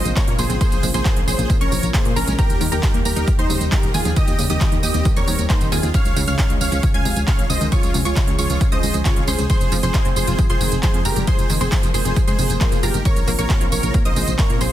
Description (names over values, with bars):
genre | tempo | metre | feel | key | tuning
uplifting trance | 135 BPM | 4/4 | straight | F minor | A4 = 440 Hz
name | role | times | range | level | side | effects
dense compressed supersaw | melody | 0.0-14.7 s | Db4 to Ab5 | -25 LUFS | right 1 dB | sidechain pumping, ping-pong delay
wide unison pluck | second line | 0.0-14.7 s | Ab5 to Ab6 | -30 LUFS | equal | sidechain pumping, ping-pong delay
lush unison pad | sustained chords | 0.0-14.7 s | Db3 to Ab4 | -29 LUFS | equal | chorus, sidechain pumping
downlifter and swell | sound effects | 0.0-2.4, 12.5-13.1 s | none | -37 LUFS | left 6 dB | none
solid FM bass | bass | 0.1-14.7 s | Eb1 to Bb2 | -22 LUFS | equal | sidechain pumping
big-room dance drum kit | drums | 0.1-14.7 s | handclaps, hi-hat, tambourine | -26 LUFS | right 3 dB | overdrive
wide unison pluck | arpeggios | 0.2-14.7 s | Db2 to Bb4 | -27 LUFS | left 2 dB | sidechain pumping, ping-pong delay
electronic kick drum | drums | 0.2-14.5 s | none | -19 LUFS | equal | none
room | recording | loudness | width
little or no reverb | dense, heavily limited modern master | -16 LUFS | side -12 dB against mid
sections
0.0-14.7 A section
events
swell 12.5-13.1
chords
0.0 Bbmadd9; 2.4 Eb; 5.9 Db; 9.5 Fm; 13.1 Bbmadd9